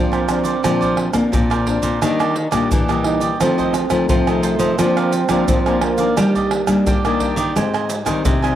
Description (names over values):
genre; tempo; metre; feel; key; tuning
samba and choro; 87 BPM; 4/4; straight; Eb major; A4 = 441 Hz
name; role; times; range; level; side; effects
breathy trombone; second line; 0.0-7.2 s; G3 to Eb4; -22 LUFS; right 6 dB; cassette tape
cavaquinho; accompaniment; 0.0-8.6 s; D4 to Ab5; -25 LUFS; right 5 dB; cassette tape
nylon-string guitar; accompaniment; 0.0-8.6 s; F2 to Eb4; -23 LUFS; left 8 dB; cassette tape
nylon-string guitar; bass; 0.0-8.6 s; Bb2 to Bb3; -20 LUFS; left 1 dB; none
tube shaker, pandeiro, tamborim and surdo; percussion; 0.1-8.6 s; none; -21 LUFS; right 2 dB; none
room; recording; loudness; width
moderate spring reverb, RT60 2.6 s; home recording on cassette; -15 LUFS; side -11 dB against mid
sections
0.0-8.6 A section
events
trombone solo 0.0-8.6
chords
0.0 Bbadd9; 2.0 Ebmaj7; 3.4 F7; 4.8 Bb/F; 6.2 Ebmaj7/G; 7.6 Abmaj7